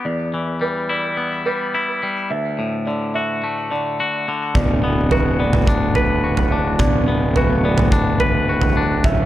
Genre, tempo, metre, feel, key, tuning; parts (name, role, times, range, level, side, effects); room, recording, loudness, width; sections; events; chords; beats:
post-rock; 107 BPM; 4/4; straight; A4 = 440 Hz
twangy electric guitar; arpeggios; 0.0-9.3 s; D2 to B4; -21 LUFS; left 2 dB; tape echo
felt-muted upright piano; arpeggios; 0.1-9.3 s; B4 to E5; -25 LUFS; right 3 dB; tape echo
fuzz picked electric bass; bass; 4.6-9.3 s; D1; -19 LUFS; equal; overdrive
huge arena drum kit; drums; 4.6-9.2 s; kick drum, toms; -19 LUFS; right 1 dB
light reverb; -16 LUFS; side -13 dB against mid
0.0-4.6 A section; 4.6-9.3 B section
0.1 Em7; 2.3 D; 4.6 Bm/D
| 0.05 0.62 1.18 1.74 | 2.30 2.87 3.43 3.99 | 4.55 5.11 5.68 6.24 | 6.80 7.36 7.92 8.48 | 9.04